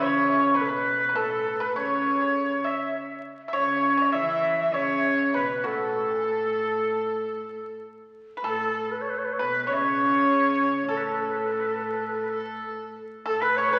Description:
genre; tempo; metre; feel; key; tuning
chinese traditional, Chinese chamber ensemble; 100 BPM; 4/4; rubato; A gong mode; A4 = 440 Hz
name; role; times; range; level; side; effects
bright reedy xiao; melody; 0.0-13.8 s; A4 to E5; -28 LUFS; equal; none
bright reedy dizi; second line; 0.0-13.8 s; A4-20c to E5; -32 LUFS; equal; none
pipa; second line; 0.0-13.8 s; A4 to E5; -34 LUFS; equal; none
rich cello; second line; 0.0-13.8 s; A2 to E3; -33 LUFS; equal; none
room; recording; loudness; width
wet concert hall reverb, RT60 2.2 s; very old 78 rpm record, vinyl crackle; -25 LUFS; mono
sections
0.0-8.4 A section; 8.4-13.8 B section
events
none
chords
none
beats
0.55 | 1.15 1.75 2.35 2.94 | 3.53 4.13 4.74 5.34 | 5.95 6.56 7.17 7.81 | 8.45 9.07 9.68 10.28 | 10.88 11.48 12.07 12.67 | 13.27

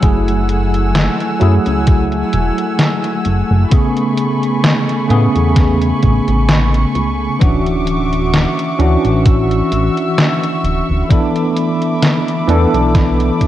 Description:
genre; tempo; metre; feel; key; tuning
vaporwave; 65 BPM; 4/4; swing 55% on 16ths; A major; A4 = 441 Hz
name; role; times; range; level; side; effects
bell-like tine electric piano; accompaniment; 0.0-13.5 s; C#3 to A4; -16 LUFS; equal; medium stereo tremolo, analog chorus, tape echo
dark studio string section; sustained chords; 0.0-13.5 s; A3 to E6; -21 LUFS; equal; vintage 12-bit sampler grit
chorused synth bass; bass; 0.0-13.3 s; D1 to A2; -15 LUFS; equal; none
detuned 8-bit digital drum machine; drums; 0.0-13.5 s; hi-hat, snare drum; -17 LUFS; left 1 dB; gated reverb
electronic kick drum; drums; 0.0-13.5 s; none; -12 LUFS; equal; none
room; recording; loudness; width
light reverb, digital ambience; cassette tape; -12 LUFS; side -13 dB against mid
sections
0.0-13.5 A section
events
none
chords
0.0 F#m9; 3.7 Amaj9; 7.4 Dmaj9; 11.1 E7sus4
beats
| 0.03 0.95 1.87 2.79 | 3.72 4.64 5.57 6.49 | 7.41 8.33 9.26 10.18 | 11.10 12.03 12.95

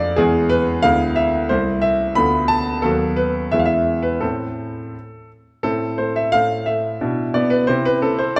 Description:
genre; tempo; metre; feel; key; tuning
classical-period piano sonatina; 89 BPM; 2/4; rubato; A minor; A4 = 442 Hz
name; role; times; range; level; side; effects
clear concert grand piano; solo; 0.0-8.4 s; C2 to B5; -19 LUFS; equal; none
room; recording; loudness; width
wet recital hall reverb, RT60 1.4 s; none; -19 LUFS; mono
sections
0.0-5.6 A section; 5.6-8.4 A section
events
none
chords
0.2 E; 0.8 E7/D; 1.5 Am/C; 2.2 Bm7b5/D; 2.8 B7/D#; 3.5 E; 4.2 Am; 7.0 E5/B; 7.7 Cmaj7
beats
| 0.18 0.84 | 1.50 2.17 | 2.84 3.53 | 4.22 4.94 | 5.64 6.33 | 7.01 7.68 | 8.36

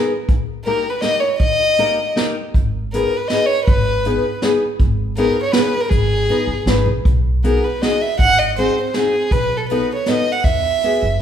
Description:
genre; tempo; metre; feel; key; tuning
musette waltz; 160 BPM; 3/4; straight; G# harmonic minor, B major from 7.1 s; A4 = 440 Hz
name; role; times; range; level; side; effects
fingerpicked steel-string acoustic guitar; accompaniment; 0.0-11.0 s; A#3 to B4; -20 LUFS; left 2 dB; none
vintage brush drum kit; drums; 0.3-10.9 s; hi-hat, kick drum, snare drum; -19 LUFS; equal; none
dark violin; melody; 0.6-11.2 s; G#4 to F#5; -18 LUFS; equal; none
upright bass; bass; 2.5-11.2 s; F#1 to E2; -21 LUFS; right 1 dB; none
room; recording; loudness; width
wet large studio reverb, RT60 1.3 s; band playing live in one room; -15 LUFS; side -9 dB against mid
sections
0.0-7.1 A section; 7.1-11.2 B section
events
none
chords
0.3 D#; 2.5 G#m; 7.1 B6; 8.2 G#7; 9.3 B7; 10.4 Eadd9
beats
| 0.30 0.67 1.03 | 1.41 1.78 2.16 | 2.54 2.92 3.30 | 3.67 4.05 4.42 | 4.80 5.17 5.54 | 5.91 6.29 6.67 | 7.06 7.44 7.82 | 8.19 8.56 8.94 | 9.31 9.69 10.07 | 10.44 10.82 11.21

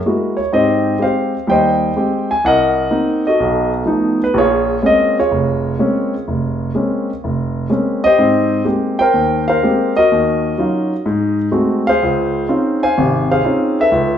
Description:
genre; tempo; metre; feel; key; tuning
solo jazz; 125 BPM; 4/4; swing 67% on 8ths; unclear; A4 = 440 Hz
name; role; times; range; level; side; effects
warm grand piano; solo; 0.0-14.2 s; F1 to Ab5; -13 LUFS; equal; none
room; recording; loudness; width
wet large studio reverb, RT60 0.8 s; band playing live in one room; -13 LUFS; side -9 dB against mid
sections
0.0-8.2 A section; 8.2-14.2 B section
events
none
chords
0.0 Gb9; 0.5 Abmaj7; 2.4 Cm7b5; 3.4 B7#11; 4.4 Bbm9; 8.2 Abmaj9; 10.1 Ebm9; 11.1 Ab7b9; 12.0 Dbmaj9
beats
0.05 | 0.53 1.01 1.49 1.96 | 2.44 2.92 3.40 3.88 | 4.36 4.84 5.32 5.79 | 6.27 6.75 7.23 7.71 | 8.19 8.67 9.15 9.62 | 10.10 10.58 11.06 11.54 | 12.02 12.49 12.97 13.45 | 13.93

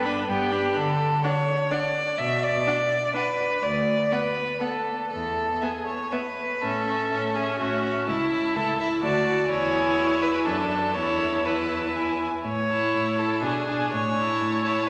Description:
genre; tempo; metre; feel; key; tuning
quick classical-period movement for string quartet; 124 BPM; 3/4; straight; A major; A4 = 441 Hz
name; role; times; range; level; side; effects
rich violin; melody; 0.0-14.9 s; E5 to B5; -37 LUFS; equal; none
clear violin; second line; 0.0-14.9 s; E4 to E5; -28 LUFS; equal; none
clear viola; accompaniment; 0.0-14.9 s; B3 to F#4; -31 LUFS; equal; none
rich cello; bass; 0.0-14.8 s; C#2 to D3; -34 LUFS; equal; none
room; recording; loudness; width
wet church reverb, RT60 2.9 s; none; -25 LUFS; mono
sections
0.0-6.6 A section; 6.6-14.9 B section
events
none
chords
0.0 G; 0.8 D5; 2.2 Bm; 3.6 Bm/D; 5.1 E5; 6.6 A; 8.1 A/C#; 9.0 D; 9.5 E; 10.5 D/F#; 11.0 Esus4; 12.5 A; 13.4 G#dim/B; 13.9 A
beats
0.28 | 0.76 1.24 1.72 | 2.19 2.67 3.15 | 3.63 4.12 4.62 | 5.12 5.62 6.13 | 6.63 7.12 7.61 | 8.09 8.56 9.04 | 9.51 9.98 10.47 | 10.96 11.46 11.96 | 12.45 12.94 13.43 | 13.93 14.41

